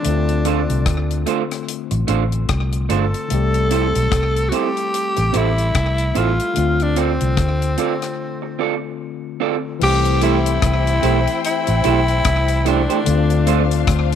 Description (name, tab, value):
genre	lovers rock reggae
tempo	74 BPM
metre	4/4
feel	swing 58% on 16ths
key	C major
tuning	A4 = 441 Hz
part	raspy tenor saxophone	melody	0.0-13.9 s	C4 to A4	-22 LUFS	equal	tape echo
part	overdriven tine electric piano	accompaniment	0.0-14.2 s	D3 to G4	-25 LUFS	left 14 dB	none
part	deep reggae drum kit	drums	0.0-14.2 s	crash cymbal, hi-hat, kick drum, rim click	-24 LUFS	left 3 dB	slapback echo
part	vintage muted fingered electric bass	bass	0.1-14.2 s	G1 to D2	-19 LUFS	equal	none
part	electric guitar through a small old amp	stabs	0.5-13.6 s	A3 to D5	-23 LUFS	right 12 dB	none
part	dark studio string section	second line	9.8-14.2 s	D4 to G5	-25 LUFS	left 12 dB	none
room	moderate spring reverb, RT60 2.8 s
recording	1960s-style stereo with parts hard left and right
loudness	-16 LUFS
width	side -9 dB against mid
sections	0.0-9.8 A section; 9.8-14.2 B section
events	break 8.2-9.8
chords	0.1 Dm7; 3.3 C6; 6.6 Dm7; 9.8 C6; 13.1 Dm7